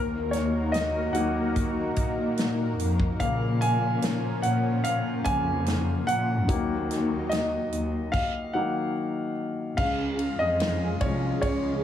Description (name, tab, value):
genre	pop ballad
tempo	73 BPM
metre	4/4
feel	straight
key	unclear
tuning	A4 = 440 Hz
part	lush unison pad	sustained chords	0.0-11.8 s	F3 to Bb4	-32 LUFS	equal	chorus, phaser
part	dark symphonic cello section	bass	0.0-11.8 s	C2 to Bb2	-28 LUFS	left 1 dB	none
part	clear baby grand piano	accompaniment	0.3-11.8 s	Db3 to Ab5	-28 LUFS	left 1 dB	none
part	natural country drum kit	drums	0.3-11.6 s	crash cymbal, hi-hat, kick drum, ride cymbal, snare drum	-31 LUFS	equal	none
room	light reverb, small room ambience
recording	none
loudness	-24 LUFS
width	side -10 dB against mid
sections	0.0-9.8 A section; 9.8-11.8 B section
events	grand piano solo 0.0-9.8, 9.8-11.8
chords	0.0 Ebm; 3.2 Bbm; 6.5 Ebm; 9.8 Db